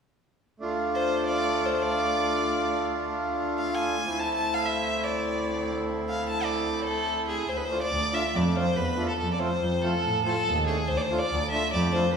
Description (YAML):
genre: klezmer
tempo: free time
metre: none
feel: none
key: D minor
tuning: A4 = 440 Hz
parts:
  - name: accordion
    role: accompaniment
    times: 0.6-12.1 s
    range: A3 to F4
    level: -29 LUFS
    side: right 1 dB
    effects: none
  - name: clear double bass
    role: bass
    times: 0.6-12.0 s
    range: D2 to A2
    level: -31 LUFS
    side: right 1 dB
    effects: none
  - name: clear violin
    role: melody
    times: 0.9-12.2 s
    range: G#4 to A5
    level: -28 LUFS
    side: left 1 dB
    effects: none
room: wet recital hall reverb, RT60 1.6 s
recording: recorded in a church or concert hall, small room reverb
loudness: -24 LUFS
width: side -6 dB against mid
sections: 0.6-7.5 A section; 7.5-12.2 B section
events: none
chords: 0.6 Dm; 4.1 Am/D; 7.5 Dm; 9.2 F; 10.9 Dm